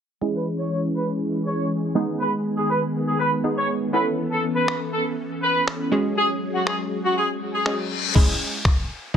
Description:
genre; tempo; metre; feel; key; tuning
dance-pop; 121 BPM; 4/4; straight; C# minor; A4 = 439 Hz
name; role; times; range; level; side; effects
wavetable chord stab; accompaniment; 0.2-9.2 s; G#3 to A4; -26 LUFS; right 2 dB; phaser, sidechain pumping, low-pass filter
string machine, violas; sustained chords; 0.2-8.1 s; D#3 to A4; -26 LUFS; equal; ensemble chorus, sidechain pumping, low-pass filter
clear horn section; melody; 0.3-7.7 s; F#4 to C#5; -24 LUFS; equal; low-pass filter, digital delay
trip hop sampler-style drum kit; drums; 4.7-9.2 s; crash cymbal, finger snaps, kick drum; -20 LUFS; equal; none
reverse cymbal and downlifter; sound effects; 7.6-9.2 s; none; -28 LUFS; left 4 dB; none
room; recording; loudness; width
light reverb, digital ambience; none; -20 LUFS; side -8 dB against mid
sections
0.2-8.2 A section; 8.2-9.2 B section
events
filter sweep 0.2-8.2; reverse cymbal 7.6-8.2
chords
0.2 C#m; 2.0 G#m; 3.9 Aadd9; 5.9 F#sus2; 8.2 C#m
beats
| 0.22 0.72 1.21 1.71 | 2.20 2.70 3.19 3.69 | 4.19 4.68 5.18 5.67 | 6.17 6.67 7.16 7.66 | 8.15 8.65 9.14

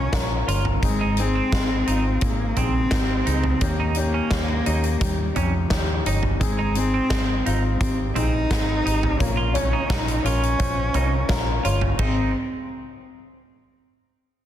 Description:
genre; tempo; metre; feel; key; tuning
piano-driven pop; 86 BPM; 4/4; straight; Ab major; A4 = 440 Hz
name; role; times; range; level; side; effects
dark cello; melody; 0.0-12.3 s; F3 to Eb4; -26 LUFS; equal; none
warm baby grand piano; accompaniment; 0.0-12.3 s; Ab1 to Db5; -29 LUFS; left 5 dB; none
vintage muted fingered electric bass; bass; 0.0-12.3 s; G1 to F2; -24 LUFS; equal; none
huge arena drum kit; drums; 0.1-12.2 s; hi-hat, kick drum, ride cymbal, snare drum, toms; -25 LUFS; equal; none
clean electric guitar; riff; 0.5-12.3 s; C4 to F4; -31 LUFS; right 6 dB; lush chorus
room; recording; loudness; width
light reverb; dense, heavily limited modern master; -20 LUFS; side -11 dB against mid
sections
0.0-12.0 A section; 12.0-14.5 B section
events
none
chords
0.0 Bbm; 0.8 Ab; 3.6 Eb7; 6.4 Ab; 9.2 Bbm; 12.0 Ab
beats
0.13 | 0.83 1.52 2.22 2.92 | 3.62 4.32 5.02 5.71 | 6.41 7.11 7.81 8.51 | 9.20 9.90 10.60 11.30 | 11.99

